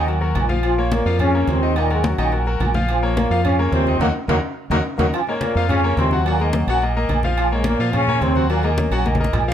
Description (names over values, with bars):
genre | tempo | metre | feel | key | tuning
latin, salsa | 214 BPM | 4/4 | straight | Bb minor | A4 = 441 Hz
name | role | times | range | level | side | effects
warm trombone section | melody | 0.0-9.0 s | Gb2 to F4 | -22 LUFS | left 1 dB | none
bright concert grand piano | accompaniment | 0.0-9.5 s | Eb3 to Gb5 | -23 LUFS | left 3 dB | none
deep dub fingered electric bass | bass | 0.0-9.5 s | Bb1 to Bb2 | -21 LUFS | right 1 dB | none
agogo bells and timbales | percussion | 0.1-9.5 s | none | -27 LUFS | right 7 dB | none
congas | percussion | 0.1-9.4 s | none | -26 LUFS | left 2 dB | none
room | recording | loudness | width
light reverb | none | -16 LUFS | side -10 dB against mid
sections
0.0-5.1 A section; 5.1-9.5 A section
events
band accent 4.0-5.1; drum fill 4.7-5.1, 9.1-9.5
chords
0.0 Ebm; 0.6 Bbm; 1.8 Ebm; 2.9 Bbm; 4.0 Ebm; 5.1 Bbm; 6.3 Ebm; 7.4 Bbm; 8.5 Ebm